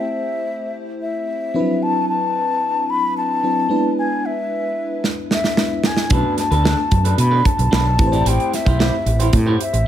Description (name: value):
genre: polished 1980s jazz-funk pop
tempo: 112 BPM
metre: 4/4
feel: straight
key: A dorian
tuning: A4 = 440 Hz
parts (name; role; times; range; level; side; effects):
- breathy mellow concert flute; melody; 0.0-9.9 s; E5 to B5; -21 LUFS; left 2 dB; none
- FM electric piano with soft pad layer; accompaniment; 0.0-9.9 s; F3 to C5; -23 LUFS; left 1 dB; tremolo, lush chorus
- modern studio drum kit; drums; 5.0-9.9 s; hi-hat, kick drum, snare drum; -19 LUFS; right 2 dB; none
- electric guitar at the edge of break-up; riff; 6.1-9.8 s; D4 to D5; -24 LUFS; right 2 dB; lush chorus
- fretless electric bass; bass; 6.1-9.8 s; A1 to B2; -17 LUFS; right 1 dB; none
room: light reverb, small room ambience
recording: none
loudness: -16 LUFS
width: side -11 dB against mid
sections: 0.0-9.9 A section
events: drum fill 5.0-6.1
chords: 0.0 Am7; 1.6 D13; 3.7 E7; 6.1 Bm7; 8.0 Am7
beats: 0.21 0.75 1.28 | 1.82 2.36 2.89 3.43 | 3.97 4.50 5.04 5.58 | 6.12 6.65 7.19 7.72 | 8.26 8.80 9.34 9.87